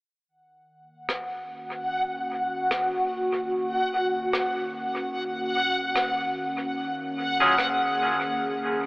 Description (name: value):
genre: ambient dub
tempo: 74 BPM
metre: 4/4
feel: swing 59% on 16ths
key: Eb minor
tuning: A4 = 440 Hz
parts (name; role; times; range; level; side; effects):
- warbly tape-like pad; sustained chords; 0.3-8.9 s; Eb3 to Ab4; -30 LUFS; equal; chorus, built-in reverb
- backwards swelling texture; texture; 1.1-8.9 s; Gb5; -27 LUFS; equal; built-in reverb
- rim click; drums; 1.1-7.8 s; none; -33 LUFS; equal; dub echo
- clean electric guitar; stabs; 7.4-7.5 s; Gb3 to Ab4; -24 LUFS; equal; dub echo
room: moderate huge ambient reverb, RT60 4.9 s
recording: telephone sound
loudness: -24 LUFS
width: side -30 dB against mid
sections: 0.3-8.9 A section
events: filter sweep on ambient pad 0.3-8.9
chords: 0.3 Ebm11